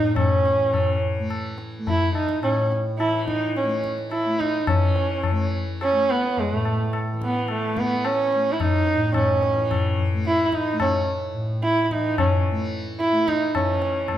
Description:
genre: indian classical, Hindustani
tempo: 108 BPM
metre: 4/4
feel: straight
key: A raga yaman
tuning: A4 = 441 Hz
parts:
  - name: dark sarangi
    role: melody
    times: 0.0-14.2 s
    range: A3 to E4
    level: -22 LUFS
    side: right 1 dB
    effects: none
  - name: tanpura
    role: drone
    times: 0.0-14.2 s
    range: A2 to A3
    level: -28 LUFS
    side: equal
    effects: none
  - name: tabla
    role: percussion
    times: 0.2-14.2 s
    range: none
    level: -25 LUFS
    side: left 3 dB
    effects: none
room: wet large studio reverb, RT60 1.4 s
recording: band playing live in one room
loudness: -20 LUFS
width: side -11 dB against mid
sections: 0.0-4.7 A section; 4.7-13.5 B section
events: speeding up 0.0-14.2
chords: none

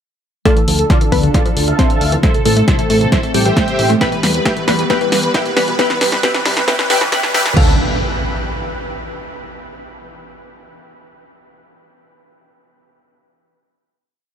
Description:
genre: uplifting trance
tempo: 135 BPM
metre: 4/4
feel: straight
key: D dorian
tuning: A4 = 439 Hz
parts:
  - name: supersaw chords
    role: melody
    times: 0.5-7.7 s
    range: E4 to A5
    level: -19 LUFS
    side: right 1 dB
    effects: analog chorus, sidechain pumping, low-pass filter, dub echo
  - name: glassy wavetable pluck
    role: second line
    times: 0.5-7.7 s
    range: G3 to F5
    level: -21 LUFS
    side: left 1 dB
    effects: chorus, digital delay
  - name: lush unison pad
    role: sustained chords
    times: 0.5-7.8 s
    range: D3 to A4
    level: -24 LUFS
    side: equal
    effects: chorus, sidechain pumping
  - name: analog pluck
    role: arpeggios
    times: 0.5-7.8 s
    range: B2 to A3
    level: -24 LUFS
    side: left 2 dB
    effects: chorus, sidechain pumping, digital delay
  - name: electronic kick drum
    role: drums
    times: 0.5-7.7 s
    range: none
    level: -16 LUFS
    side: equal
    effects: none
  - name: punchy analog drum machine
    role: drums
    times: 0.5-7.7 s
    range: crash cymbal, hi-hat, snare drum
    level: -20 LUFS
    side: equal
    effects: none
  - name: riser and impact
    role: sound effects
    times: 2.4-9.3 s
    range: none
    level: -26 LUFS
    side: right 1 dB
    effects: none
  - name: fat analog bass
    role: bass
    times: 0.7-7.8 s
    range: G1 to E2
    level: -19 LUFS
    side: equal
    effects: sidechain pumping
room: light reverb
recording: high-pass filter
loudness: -12 LUFS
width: side -8 dB against mid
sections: 0.5-7.6 build; 7.6-9.3 final chord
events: build-up 0.5-7.6; drum fill 0.5-7.6; filter sweep on supersaw synth 0.5-7.6; filter sweep on synth pluck 0.5-7.6; filter sweep 0.5-7.6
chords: 0.5 Dmadd9; 2.2 Am; 4.0 Em; 5.8 C; 7.6 Dmadd9

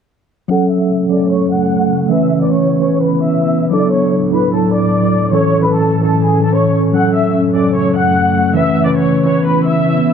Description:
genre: hip hop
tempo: 149 BPM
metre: 4/4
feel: half-time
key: unclear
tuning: A4 = 439 Hz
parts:
  - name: warm symphonic violin section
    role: melody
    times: 0.5-10.1 s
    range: G#4 to F#6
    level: -18 LUFS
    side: left 2 dB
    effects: low-pass filter
  - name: mellow tine electric piano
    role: accompaniment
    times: 0.5-10.1 s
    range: E3 to B4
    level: -13 LUFS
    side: right 1 dB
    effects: medium stereo tremolo, low-pass filter
  - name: ethereal airy pad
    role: sustained chords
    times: 1.0-10.1 s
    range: D2 to E4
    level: -18 LUFS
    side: equal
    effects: ensemble chorus, built-in reverb, low-pass filter
room: moderate lush hall reverb, RT60 2.5 s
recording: dark, warm production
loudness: -11 LUFS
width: side -7 dB against mid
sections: 0.5-10.1 A section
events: filter sweep 0.5-10.1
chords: 0.5 F#m; 2.1 C#m7; 3.7 D; 5.3 A; 6.9 F#m; 8.6 C#m7

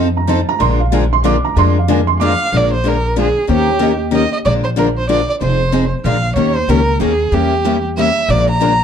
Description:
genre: acoustic string swing (jazz manouche)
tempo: 187 BPM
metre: 3/4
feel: swing 59% on 8ths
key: Bb mixolydian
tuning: A4 = 441 Hz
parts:
  - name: picked steel-string acoustic guitar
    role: accompaniment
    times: 0.0-8.7 s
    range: Eb3 to Bb4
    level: -18 LUFS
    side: left 7 dB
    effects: none
  - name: picked steel-string acoustic guitar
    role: accompaniment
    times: 0.0-8.7 s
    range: D3 to Bb4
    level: -22 LUFS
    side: right 6 dB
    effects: none
  - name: upright bass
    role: bass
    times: 0.0-8.8 s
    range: F1 to F2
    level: -17 LUFS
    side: equal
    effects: none
  - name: felt-muted upright piano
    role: second line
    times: 0.2-4.0 s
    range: C5 to D6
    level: -19 LUFS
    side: right 8 dB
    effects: slapback echo
  - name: dark violin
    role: melody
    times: 2.2-8.8 s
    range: G4 to Bb5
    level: -16 LUFS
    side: right 2 dB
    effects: none
room: moderate club reverb, RT60 0.9 s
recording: dark, warm production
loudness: -12 LUFS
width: side -8 dB against mid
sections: 0.0-2.5 A section; 2.5-8.8 B section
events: felt piano solo 0.0-2.5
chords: 0.0 F7; 0.6 Bb7; 3.5 Eb7; 4.4 Bb7; 5.4 Fm7; 6.0 Bb7; 6.4 Eb7; 7.3 Edim7; 8.3 Bb7

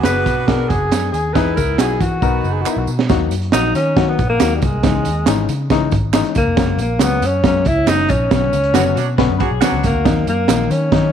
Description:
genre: uptempo 1960s-style soul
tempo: 138 BPM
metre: 4/4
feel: straight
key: unclear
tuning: A4 = 441 Hz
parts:
  - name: breathy alto saxophone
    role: melody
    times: 0.0-11.1 s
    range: G3 to B4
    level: -19 LUFS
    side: equal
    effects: none
  - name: warm saxophone section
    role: second line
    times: 0.0-2.9, 8.7-9.9 s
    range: D#3 to F#4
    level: -25 LUFS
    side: right 10 dB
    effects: none
  - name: barky reed electric piano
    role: accompaniment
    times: 0.0-11.1 s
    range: D3 to A#4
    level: -21 LUFS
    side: left 13 dB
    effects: overdrive
  - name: vintage muted picked electric bass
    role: bass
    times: 0.0-11.1 s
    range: E#1 to E3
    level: -20 LUFS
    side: left 1 dB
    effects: none
  - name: crunchy breakbeat drum kit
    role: drums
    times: 0.0-11.0 s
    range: hi-hat, kick drum, snare drum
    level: -18 LUFS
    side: right 4 dB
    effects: none
  - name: handclaps and tambourine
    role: percussion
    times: 0.1-10.8 s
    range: none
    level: -30 LUFS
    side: right 10 dB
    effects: none
  - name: electric guitar through a small old amp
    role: riff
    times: 9.2-10.0 s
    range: F#4 to B4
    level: -27 LUFS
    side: left 11 dB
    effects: none
room: light reverb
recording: 1960s-style stereo with parts hard left and right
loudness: -14 LUFS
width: side -8 dB against mid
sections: 0.0-3.1 A section; 3.1-11.1 B section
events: drum fill 2.2-3.1; band accent 8.3-10.1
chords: 0.0 Bm6; 1.4 Emaj7; 2.2 Bmaj7; 3.1 D#m; 4.8 C#madd9; 6.6 F#add9; 8.3 Bmadd9; 10.1 D#m

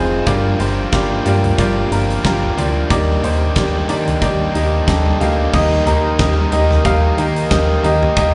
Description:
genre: piano-driven pop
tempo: 91 BPM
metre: 4/4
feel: swing 56% on 16ths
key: unclear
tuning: A4 = 439 Hz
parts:
  - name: bright upright piano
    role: accompaniment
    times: 0.0-8.3 s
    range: G2 to F5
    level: -20 LUFS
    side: equal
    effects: slapback echo
  - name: mellow tonewheel organ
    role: sustained chords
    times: 0.0-8.3 s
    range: Bb4 to Eb6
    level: -31 LUFS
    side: equal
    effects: slow rotary speaker
  - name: overdriven electric guitar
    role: riff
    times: 0.0-8.3 s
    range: G2 to Bb4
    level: -24 LUFS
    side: equal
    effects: slapback echo
  - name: chorused synth bass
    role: bass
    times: 0.0-8.3 s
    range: F1 to Eb3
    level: -21 LUFS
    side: equal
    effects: none
  - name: huge arena drum kit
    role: drums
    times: 0.3-8.3 s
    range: crash cymbal, hi-hat, kick drum, snare drum, toms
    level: -23 LUFS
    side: equal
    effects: none
room: light reverb, small room ambience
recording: live gig heard through the venue's PA, club reverb, nothing above 11.0 kHz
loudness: -16 LUFS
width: mono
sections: 0.0-5.5 A section; 5.5-8.3 B section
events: none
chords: 0.3 Gm7; 2.9 Ebmaj7; 5.5 Eb

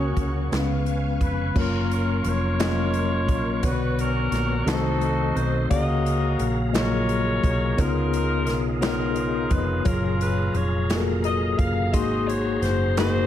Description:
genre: slow gospel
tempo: 58 BPM (dotted quarters)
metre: 6/8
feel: straight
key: F# major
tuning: A4 = 440 Hz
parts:
  - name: breathy tenor saxophone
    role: melody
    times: 0.0-0.9 s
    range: C#4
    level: -36 LUFS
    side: right 4 dB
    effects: none
  - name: bright saxophone section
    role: melody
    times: 0.0-13.3 s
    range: C#4 to E#5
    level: -28 LUFS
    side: left 2 dB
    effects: none
  - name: mellow tine electric piano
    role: accompaniment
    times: 0.0-13.3 s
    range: G#2 to B#5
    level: -25 LUFS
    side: left 3 dB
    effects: medium stereo tremolo
  - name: tonewheel organ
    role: sustained chords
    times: 0.0-13.3 s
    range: B3 to C#6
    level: -35 LUFS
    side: right 3 dB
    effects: fast rotary speaker, chorus vibrato
  - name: warm symphonic string section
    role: sustained chords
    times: 0.0-1.6 s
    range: F#3 to E#5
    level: -38 LUFS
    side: right 2 dB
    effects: none
  - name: hollow-body short-scale fingered electric bass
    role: bass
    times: 0.0-13.3 s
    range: E#1 to C#2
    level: -26 LUFS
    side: right 1 dB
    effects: none
  - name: swinging big-band drum kit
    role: drums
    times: 0.2-13.1 s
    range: crash cymbal, hi-hat, kick drum, snare drum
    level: -28 LUFS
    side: equal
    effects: none
  - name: group handclap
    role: percussion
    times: 0.5-13.3 s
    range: none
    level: -36 LUFS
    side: right 8 dB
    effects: none
room: light reverb, small room reverb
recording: none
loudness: -21 LUFS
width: side -11 dB against mid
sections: 0.0-1.6 A section; 1.6-13.3 B section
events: none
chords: 0.0 F#/C#; 0.5 C#7; 1.6 F#maj7; 3.6 Bmadd9; 4.7 Cdim7; 5.7 F#maj9; 7.8 C#13; 9.9 F#maj9; 11.9 G#9

